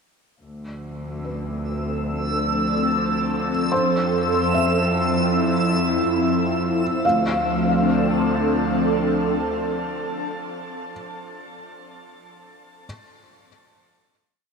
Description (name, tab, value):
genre	ambient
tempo	72 BPM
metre	4/4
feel	straight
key	D dorian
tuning	A4 = 441 Hz
part	airy breathy pad	sustained chords	0.4-11.1 s	F3 to A4	-22 LUFS	equal	chorus, phaser
part	rich studio cello section	bass	0.4-9.5 s	D2 to F2	-26 LUFS	equal	none
part	backwards swelling texture	texture	1.7-7.1 s	E6	-28 LUFS	right 1 dB	built-in reverb
part	felt-muted upright piano	arpeggios	1.2-12.9 s	B4 to F5	-27 LUFS	left 2 dB	ping-pong delay
room	wet shimmer reverb, RT60 6.6 s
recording	cassette tape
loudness	-19 LUFS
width	side -5 dB against mid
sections	0.4-7.0 A section; 7.0-10.3 final chord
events	fade-in on analog synth pad 0.4-7.0; fade-in on felt piano 0.4-7.0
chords	0.4 Dm7; 3.7 Fmaj7; 7.0 Dm7